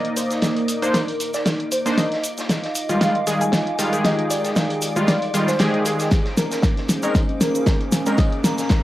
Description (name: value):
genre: deep house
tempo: 116 BPM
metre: 4/4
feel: swing 55% on 16ths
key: unclear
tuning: A4 = 440 Hz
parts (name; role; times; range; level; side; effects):
- soft round pluck; melody; 0.0-6.1 s; Ab4 to Ab5; -27 LUFS; equal; ensemble chorus, cassette tape, tape echo
- dark analog pad; sustained chords; 0.0-8.8 s; Bb3 to D6; -27 LUFS; equal; chorus, phaser, vintage 12-bit sampler grit, sidechain pumping
- warm analog keys; stabs; 0.0-8.2 s; Eb3 to Eb5; -22 LUFS; equal; chorus, sidechain pumping, tape echo
- deep house drum kit; drums; 0.0-8.8 s; hi-hat, snare drum; -22 LUFS; equal; cassette tape
- soft string machine; texture; 0.1-8.8 s; Eb4 to D6; -35 LUFS; left 1 dB; ensemble chorus
- vintage drum kit; drums; 0.2-8.8 s; hi-hat, snare drum; -33 LUFS; equal; high-pass filter on hats, cassette tape, high-pass filter on snare, high-pass filter on room
- cabasa; percussion; 0.2-8.8 s; none; -32 LUFS; right 1 dB; none
- electronic kick drum; drums; 6.1-8.8 s; none; -19 LUFS; equal; cassette tape
- riser; sound effects; 7.8-8.8 s; none; -42 LUFS; equal; none
- airy dreamy lead; melody; 6.4-8.7 s; Bb4 to Eb5; -26 LUFS; equal; chorus, cassette tape, tape echo
room: wet booth ambience, RT60 0.2 s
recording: home recording on cassette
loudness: -18 LUFS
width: side -15 dB against mid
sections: 0.0-8.8 A section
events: build-up 0.0-8.8; drum fill 0.0-8.8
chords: 0.0 Cm9; 2.0 Fm9; 6.1 Bbm9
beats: 0.43 0.94 1.46 | 1.98 2.50 3.01 3.53 | 4.05 4.56 5.08 5.60 | 6.12 6.63 7.15 7.67 | 8.18 8.70